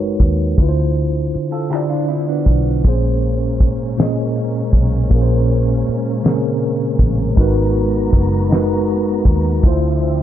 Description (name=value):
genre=slow six-eight R&B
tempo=53 BPM (dotted quarters)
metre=6/8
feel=straight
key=unclear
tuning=A4 = 440 Hz
part: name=mellow tine electric piano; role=accompaniment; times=0.0-10.2 s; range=Bb2 to Eb5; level=-18 LUFS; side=equal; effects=medium stereo tremolo
part: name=vintage muted fingered electric bass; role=bass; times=0.0-10.2 s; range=Gb1 to Eb2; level=-18 LUFS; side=equal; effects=none
part: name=damped 70s drum kit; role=drums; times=0.2-10.2 s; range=finger snaps, hi-hat, kick drum, snare drum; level=-14 LUFS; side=equal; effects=none
part: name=electric guitar through a small old amp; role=second line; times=1.5-2.8 s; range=B3 to A4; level=-24 LUFS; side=right 9 dB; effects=none
part: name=muted studio string section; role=sustained chords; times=2.8-10.2 s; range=D3 to Bb5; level=-28 LUFS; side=right 1 dB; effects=none
room=light reverb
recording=low-pass filter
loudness=-14 LUFS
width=side -11 dB against mid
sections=0.0-10.2 A section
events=none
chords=0.0 Abm9; 0.6 Dm9; 2.8 Bbm9; 7.4 Abm9; 9.6 Dm9